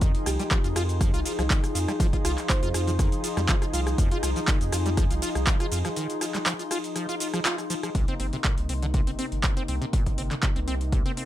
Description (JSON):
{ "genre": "acid house", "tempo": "121 BPM", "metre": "4/4", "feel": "swing 53% on 16ths", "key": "unclear", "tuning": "A4 = 440 Hz", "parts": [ { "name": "warm analog pad", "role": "sustained chords", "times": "0.0-11.3 s", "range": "C3 to Ab4", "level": "-35 LUFS", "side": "right 1 dB", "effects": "wide subtle chorus, sidechain pumping" }, { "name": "acid bass, saw", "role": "riff", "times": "0.0-11.2 s", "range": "Bb2 to F4", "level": "-33 LUFS", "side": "equal", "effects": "analog chorus, cassette tape, ping-pong delay" }, { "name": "saturated sub bass", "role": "bass", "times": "0.0-11.0 s", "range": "G1 to F2", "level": "-28 LUFS", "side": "equal", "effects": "sidechain pumping" }, { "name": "electro analog drum machine", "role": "drums", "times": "0.0-11.3 s", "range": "cabasa, handclaps, hi-hat, ride cymbal, rim click", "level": "-30 LUFS", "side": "equal", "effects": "none" }, { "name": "electronic kick drum", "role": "drums", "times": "0.0-11.0 s", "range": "none", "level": "-24 LUFS", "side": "equal", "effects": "none" }, { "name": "warbly tape-like pad", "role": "texture", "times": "0.0-11.3 s", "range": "Eb4 to C6", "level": "-34 LUFS", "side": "left 4 dB", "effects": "chorus, built-in reverb, sidechain pumping" }, { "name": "thumb-piano-like synth pluck", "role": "melody", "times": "0.3-2.9 s", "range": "G4 to C5", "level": "-38 LUFS", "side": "right 5 dB", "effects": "chorus, cassette tape, tape echo" } ], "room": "light reverb", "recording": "none", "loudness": "-23 LUFS", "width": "side -13 dB against mid", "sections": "0.0-7.9 A section; 7.9-11.3 B section", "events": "drop 0.0-7.9; break 6.0-7.9; band accent 7.5", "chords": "0.0 Fm7; 7.9 Cm7", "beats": "| 0.01 0.51 1.01 1.50 | 2.00 2.50 2.99 3.49 | 3.98 4.48 4.97 5.47 | 5.97 6.46 6.96 7.45 | 7.95 8.45 8.94 9.44 | 9.93 10.43 10.92" }